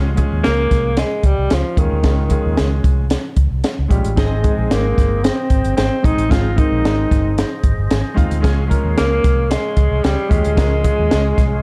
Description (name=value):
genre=uptempo 1960s-style soul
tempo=113 BPM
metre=4/4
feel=straight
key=unclear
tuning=A4 = 441 Hz
part: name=warm baby grand piano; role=accompaniment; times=0.0-11.6 s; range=Ab3 to Ab5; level=-27 LUFS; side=equal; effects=none
part: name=vintage muted fingered electric bass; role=bass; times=0.0-11.6 s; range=G1 to Eb2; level=-21 LUFS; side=equal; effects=none
part: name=compact cocktail drum kit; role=drums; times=0.2-11.5 s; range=hi-hat, kick drum, snare drum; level=-20 LUFS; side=equal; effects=none
part: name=mellow alto saxophone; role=melody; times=0.4-11.6 s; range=Eb3 to F4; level=-22 LUFS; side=equal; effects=none
part: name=percussive tonewheel organ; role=sustained chords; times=4.2-11.6 s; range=Ab4 to F5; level=-34 LUFS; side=equal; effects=slow rotary speaker, overdrive
room=light reverb, studio reverb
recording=dark, warm production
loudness=-16 LUFS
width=mono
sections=0.0-11.6 A section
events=grand piano fill 7.6-8.4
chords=0.0 Db; 4.2 Ab; 8.4 Db